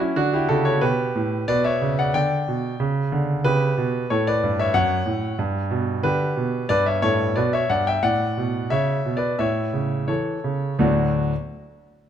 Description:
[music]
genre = classical-period piano sonatina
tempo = 82-93 BPM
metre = 4/4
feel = straight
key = D major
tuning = A4 = 440 Hz
[part]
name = clear concert grand piano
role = solo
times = 0.0-11.3 s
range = D2 to G5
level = -20 LUFS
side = equal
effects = none
[sound]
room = moderate recital hall reverb, RT60 1.8 s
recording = close, detailed microphones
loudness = -20 LUFS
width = side -9 dB against mid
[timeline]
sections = 0.0-10.8 A section; 10.8-12.1 B section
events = slowing down 4.1-10.8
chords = 0.2 D; 1.5 G/B; 2.8 Bmadd9; 4.1 F#m; 5.4 G; 6.7 Em/G; 8.0 D/A; 9.4 A; 10.8 D

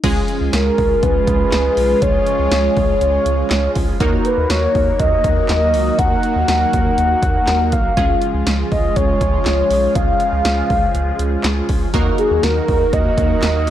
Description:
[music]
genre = synth-pop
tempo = 121 BPM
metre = 4/4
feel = straight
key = unclear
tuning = A4 = 440 Hz
[part]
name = funky polysynth comp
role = accompaniment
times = 0.0-13.7 s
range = Ab3 to Bb4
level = -22 LUFS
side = right 1 dB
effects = chorus
[part]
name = phased analog pad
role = sustained chords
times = 0.0-13.7 s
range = Db3 to Gb4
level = -26 LUFS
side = right 1 dB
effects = phaser, chorus
[part]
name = round analog bass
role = bass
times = 0.0-13.7 s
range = Cb2 to Eb2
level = -20 LUFS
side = equal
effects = none
[part]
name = punchy analog drum machine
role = drums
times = 0.0-13.7 s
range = crash cymbal, handclaps, hi-hat, kick drum, snare drum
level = -20 LUFS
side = equal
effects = none
[part]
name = mellow horn-like synth lead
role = melody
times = 0.5-13.7 s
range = Ab4 to Gb5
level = -18 LUFS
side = equal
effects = chorus
[sound]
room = light reverb, digital ambience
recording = dry, gritty hardware recording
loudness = -14 LUFS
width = side -11 dB against mid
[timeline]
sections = 0.0-13.7 A section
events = none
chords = 0.0 Db; 4.0 Ebm; 8.0 Db; 11.9 Ebm

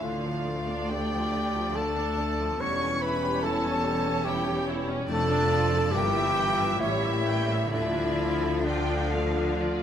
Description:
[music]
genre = classical, slow romantic movement for symphony orchestra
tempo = 70 BPM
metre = 3/4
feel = uneven beats, rubato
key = D minor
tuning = A4 = 441 Hz
[part]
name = warm studio violin section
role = melody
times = 0.0-9.8 s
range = C#5 to G5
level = -38 LUFS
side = right 1 dB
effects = none
[part]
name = clear chamber violin section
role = second line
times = 0.0-9.6 s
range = D5 to C#6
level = -36 LUFS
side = equal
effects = none
[part]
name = mellow hollow concert flute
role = second line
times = 0.0-9.6 s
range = D5 to C#6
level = -35 LUFS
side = left 1 dB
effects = none
[part]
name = warm clarinet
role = second line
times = 0.0-9.6 s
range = D4 to C#5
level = -30 LUFS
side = left 1 dB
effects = none
[part]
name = clear studio viola section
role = accompaniment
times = 0.0-9.8 s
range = D3 to G5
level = -33 LUFS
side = right 1 dB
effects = none
[part]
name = mellow French horn section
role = sustained chords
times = 0.0-9.8 s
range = G3 to G4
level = -34 LUFS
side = left 3 dB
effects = none
[part]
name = concert harp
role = arpeggios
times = 0.0-9.8 s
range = E2 to D5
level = -38 LUFS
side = left 6 dB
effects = none
[part]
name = clear chamber double bass section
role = bass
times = 0.0-9.8 s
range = E1 to D2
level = -33 LUFS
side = right 3 dB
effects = none
[part]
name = rich chamber cello section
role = bass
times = 0.0-9.8 s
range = D2 to D3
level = -33 LUFS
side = equal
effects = none
[sound]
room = moderate concert hall reverb, RT60 2.4 s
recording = none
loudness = -24 LUFS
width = side -9 dB against mid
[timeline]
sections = 0.0-9.8 A section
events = none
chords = 0.0 Dm; 2.6 C#dim/E; 5.1 Dm/F; 5.9 Edim/G; 6.8 A7b9; 7.7 Dm

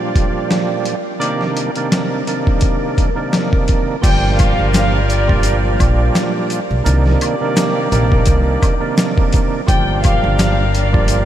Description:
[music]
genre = hip hop, boom-bap hip-hop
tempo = 85 BPM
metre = 4/4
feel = swing 56% on 16ths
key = C minor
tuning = A4 = 440 Hz
[part]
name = overdriven tonewheel organ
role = accompaniment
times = 0.0-11.2 s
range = Bb2 to D4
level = -19 LUFS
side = right 3 dB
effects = chorus vibrato, high-pass filter, low-pass filter
[part]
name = dusty soul sampler-style drum kit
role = drums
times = 0.2-11.2 s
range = crash cymbal, hi-hat, kick drum, snare drum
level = -17 LUFS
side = equal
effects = overdrive
[part]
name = bright trumpet section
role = stabs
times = 1.2-11.2 s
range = G3 to F5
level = -26 LUFS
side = left 1 dB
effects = high-pass filter, low-pass filter, analog delay
[part]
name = warm chamber violin section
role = melody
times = 4.0-11.2 s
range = D5 to G5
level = -24 LUFS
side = left 2 dB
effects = high-pass filter, low-pass filter, analog delay
[part]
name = upright bass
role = bass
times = 4.0-11.2 s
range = G1 to C2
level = -16 LUFS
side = equal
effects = none
[part]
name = tube shaker and woodblock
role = percussion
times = 4.0-11.2 s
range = none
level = -34 LUFS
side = left 5 dB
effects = none
[sound]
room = moderate huge ambient reverb, RT60 8.4 s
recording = dreamy mix soaked in reverb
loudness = -13 LUFS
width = side -11 dB against mid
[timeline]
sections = 0.0-4.0 A section; 4.0-11.2 B section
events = none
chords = 0.0 Gm7; 1.2 Cm9; 4.0 Gm7; 6.9 Cm9; 9.7 Gm7

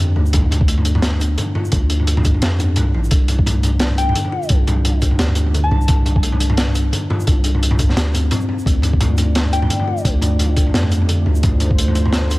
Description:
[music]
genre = half-time drum and bass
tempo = 173 BPM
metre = 4/4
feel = swing 56% on 16ths, half-time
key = D minor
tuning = A4 = 440 Hz
[part]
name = kalimba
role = arpeggios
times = 0.0-12.4 s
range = D3 to G4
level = -25 LUFS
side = left 2 dB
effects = digital delay
[part]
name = long sustained 808-style bass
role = bass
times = 0.0-12.4 s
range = A1 to F2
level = -17 LUFS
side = equal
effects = none
[part]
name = crunchy breakbeat drum kit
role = drums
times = 0.2-12.4 s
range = hi-hat, shaker, snare drum, toms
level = -20 LUFS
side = equal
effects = none
[part]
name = electronic kick drum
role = drums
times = 0.3-11.8 s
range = none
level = -16 LUFS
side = equal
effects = overdrive
[part]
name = soft synth bell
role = melody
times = 4.0-6.0, 9.5-10.0 s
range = G5 to A5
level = -26 LUFS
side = left 3 dB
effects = chorus, digital delay
[part]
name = dark analog pad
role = sustained chords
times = 8.7-12.4 s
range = A3 to D5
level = -26 LUFS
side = right 2 dB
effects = chorus, sidechain pumping
[sound]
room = small room ambience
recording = none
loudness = -14 LUFS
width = side -20 dB against mid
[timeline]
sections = 0.0-12.4 A section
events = break 8.3-8.7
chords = 0.0 Dm; 3.1 Csus2; 8.7 Dm

